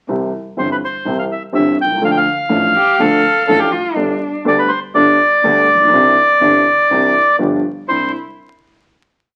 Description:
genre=tango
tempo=123 BPM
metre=4/4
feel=rubato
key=C major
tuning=A4 = 440 Hz
part: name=dark upright piano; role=accompaniment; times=0.1-8.1 s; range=G1 to A4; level=-20 LUFS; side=equal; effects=none
part: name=warm double bass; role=bass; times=0.1-8.1 s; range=G1 to D2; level=-33 LUFS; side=equal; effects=none
part: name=bandoneon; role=melody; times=0.6-8.1 s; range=B4 to G5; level=-15 LUFS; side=equal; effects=none
part: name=warm cello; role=second line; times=2.8-4.3, 7.9-8.1 s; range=D4 to A4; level=-20 LUFS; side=equal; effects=none
room=moderate studio reverb, RT60 0.9 s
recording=very old 78 rpm record, vinyl crackle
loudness=-14 LUFS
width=mono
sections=0.1-7.9 A section; 7.9-9.3 final chord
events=none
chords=0.1 C; 2.0 Dm; 4.0 Gadd9; 5.9 Cadd9; 7.4 G7; 7.9 Cadd9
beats=| 0.09 0.58 1.06 1.55 | 2.04 2.52 3.01 3.49 | 3.98 4.46 4.95 5.44 | 5.92 6.41 6.91 7.40 | 7.89

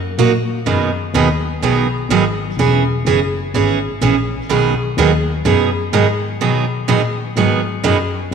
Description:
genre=country, western swing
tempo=126 BPM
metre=4/4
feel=swing 68% on 8ths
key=B major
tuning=A4 = 439 Hz
part: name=dark double bass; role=bass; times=0.0-8.3 s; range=E1 to B2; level=-18 LUFS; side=left 3 dB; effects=none
part: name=picked steel-string acoustic guitar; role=accompaniment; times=0.2-8.3 s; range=B2 to G#4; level=-16 LUFS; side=right 6 dB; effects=none
room=wet echo chamber reverb, RT60 2.5 s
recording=none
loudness=-14 LUFS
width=side -6 dB against mid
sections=0.7-8.3 A section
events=none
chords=0.0 F#6; 0.7 B6; 2.6 E6; 4.5 B6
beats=0.18 | 0.67 1.15 1.63 2.11 | 2.59 3.07 3.54 4.02 | 4.50 4.98 5.46 5.93 | 6.41 6.89 7.37 7.84 | 8.32

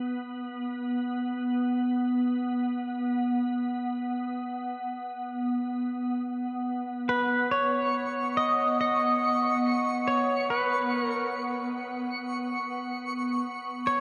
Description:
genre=ambient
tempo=free time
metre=none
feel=none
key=B major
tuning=A4 = 440 Hz
part: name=organ-like drone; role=drone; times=0.0-14.0 s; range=B3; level=-31 LUFS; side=equal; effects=ensemble chorus, built-in reverb
part: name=pedal steel guitar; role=melody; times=7.1-14.0 s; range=B4 to D#5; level=-29 LUFS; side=equal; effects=delay
part: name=twinkling granular texture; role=texture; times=7.8-14.0 s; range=C#6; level=-36 LUFS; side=equal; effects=built-in reverb
room=wet cathedral reverb, RT60 5.5 s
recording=worn, warbling old tape, cassette tape, warbly pitch drift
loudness=-29 LUFS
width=mono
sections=0.0-7.1 A section; 7.1-14.0 B section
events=none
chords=0.0 N.C.; 7.1 Bsus2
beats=free time

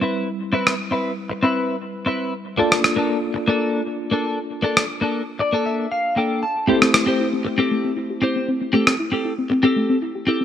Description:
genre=nu-disco, nu disco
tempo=117 BPM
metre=4/4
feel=straight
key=unclear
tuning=A4 = 439 Hz
part: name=tine electric piano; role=accompaniment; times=0.0-10.4 s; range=G3 to D5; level=-26 LUFS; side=equal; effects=overdrive, fast stereo tremolo, dub echo
part: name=direct-recorded clean electric guitar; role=riff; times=0.0-10.4 s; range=Bb3 to A5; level=-21 LUFS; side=left 1 dB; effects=lush chorus, vintage 12-bit sampler grit, low-pass filter
part: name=electronic rim click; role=drums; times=0.7-9.0 s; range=none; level=-19 LUFS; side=equal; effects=studio reverb
part: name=soft round pluck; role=arpeggios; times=6.7-10.4 s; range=A3 to G4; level=-22 LUFS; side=left 2 dB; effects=chorus, dub echo
room=light reverb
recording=none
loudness=-18 LUFS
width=side -10 dB against mid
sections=0.0-10.4 A section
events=clean electric guitar fill 5.2-6.7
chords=0.0 Cmaj7; 2.6 Bbmaj7; 6.7 Am7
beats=0.02 | 0.53 1.05 1.56 2.07 | 2.59 3.10 3.61 4.12 | 4.64 5.15 5.66 6.17 | 6.69 7.20 7.71 8.23 | 8.74 9.25 9.77 10.28

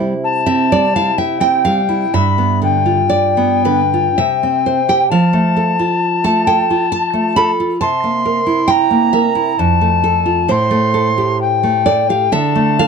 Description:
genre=romantic duo for recorder and classical guitar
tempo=53-69 BPM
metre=3/4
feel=rubato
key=C major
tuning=A4 = 440 Hz
part: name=nylon-string guitar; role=accompaniment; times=0.0-12.9 s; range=F2 to B5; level=-14 LUFS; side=right 4 dB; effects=none
part: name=mellow alto recorder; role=melody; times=0.2-12.9 s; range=G5 to C6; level=-16 LUFS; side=left 6 dB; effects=none
room=light reverb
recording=dark, warm production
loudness=-12 LUFS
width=side -5 dB against mid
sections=0.0-12.9 A section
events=none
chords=0.0 C; 2.1 G7; 4.2 C; 5.1 F; 7.8 C7; 9.6 F; 10.5 Am7; 12.3 Dm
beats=0.23 1.18 | 2.14 3.11 4.17 | 5.12 6.03 6.92 | 7.81 8.70 9.59 | 10.49 11.40 12.32

